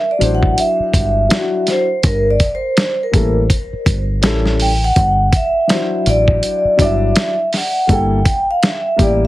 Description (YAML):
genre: hip hop, jazz-hop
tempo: 82 BPM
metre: 4/4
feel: swing 60% on 16ths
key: G dorian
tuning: A4 = 442 Hz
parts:
  - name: vibraphone with medium mallets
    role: melody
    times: 0.0-9.3 s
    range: Bb4 to G5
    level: -17 LUFS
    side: right 1 dB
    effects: ping-pong delay
  - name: dark upright piano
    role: accompaniment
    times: 0.2-9.3 s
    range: E3 to D5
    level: -20 LUFS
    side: left 3 dB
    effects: none
  - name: deep dub fingered electric bass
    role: bass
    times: 0.2-9.3 s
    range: G1 to A1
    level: -17 LUFS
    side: equal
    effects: none
  - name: dusty soul sampler-style drum kit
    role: drums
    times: 0.2-9.2 s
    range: hi-hat, kick drum, snare drum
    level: -16 LUFS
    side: equal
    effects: none
room: light reverb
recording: heavily compressed radio sound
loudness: -13 LUFS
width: side -16 dB against mid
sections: 0.0-9.3 A section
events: vibraphone solo 0.0-9.3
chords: 0.0 D9; 2.0 Gm69; 4.2 A7; 5.0 D9/G; 7.9 Gm69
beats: 0.57 1.30 | 2.04 2.77 3.50 4.23 | 4.96 5.70 6.43 7.16 | 7.89 8.62